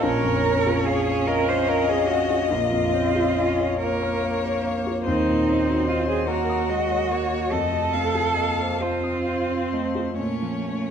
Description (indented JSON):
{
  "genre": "classical, slow romantic movement for piano quartet",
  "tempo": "43-49 BPM (dotted quarters)",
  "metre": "12/8",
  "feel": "rubato",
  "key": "Bb minor",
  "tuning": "A4 = 440 Hz",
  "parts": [
    { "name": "rich violin", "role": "melody", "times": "0.0-10.9 s", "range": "Bb4 to F5", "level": "-27 LUFS", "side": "left 6 dB", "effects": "none" },
    { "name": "rich cello", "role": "second line", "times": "0.0-10.9 s", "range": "A3 to C5", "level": "-25 LUFS", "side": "right 5 dB", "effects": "none" },
    { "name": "rich viola", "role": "accompaniment", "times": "0.0-10.9 s", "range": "Ab3 to Db4", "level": "-29 LUFS", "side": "right 2 dB", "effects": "none" },
    { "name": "warm concert grand piano", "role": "accompaniment", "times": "0.0-10.9 s", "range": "Bb1 to F6", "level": "-26 LUFS", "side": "left 2 dB", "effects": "none" }
  ],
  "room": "wet scoring stage reverb, RT60 1.4 s",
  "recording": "dark, warm production",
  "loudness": "-20 LUFS",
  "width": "side -7 dB against mid",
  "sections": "0.0-10.9 A section",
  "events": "none",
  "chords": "0.0 Bbm; 5.0 Ebm7; 7.5 F7; 10.2 Bbm"
}